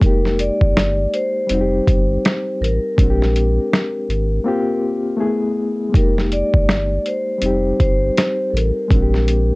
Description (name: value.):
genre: lo-fi hip hop.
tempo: 81 BPM.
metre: 4/4.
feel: swing 60% on 16ths.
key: F dorian.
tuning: A4 = 440 Hz.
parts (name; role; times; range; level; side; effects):
vibraphone with soft mallets; melody; 0.0-9.6 s; A4 to D5; -22 LUFS; equal; none.
reed electric piano; accompaniment; 0.0-9.6 s; G3 to G#4; -21 LUFS; left 2 dB; overdrive, medium tremolo.
warm sub bass; bass; 0.0-9.5 s; F1 to Bb1; -19 LUFS; equal; none.
lo-fi sampler-style drum kit; drums; 0.0-9.5 s; hi-hat, kick drum, snare drum; -16 LUFS; equal; none.
room: light reverb.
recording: cassette tape.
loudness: -15 LUFS.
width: side -24 dB against mid.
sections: 0.0-5.9 A section; 5.9-9.6 A section.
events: break 4.5-5.9.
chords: 0.0 Fm11; 1.5 F9; 3.0 Bb13; 4.5 Fsus24/Bb; 5.2 Eadd11/A; 5.9 Fm11; 7.4 F9; 8.9 Bb13.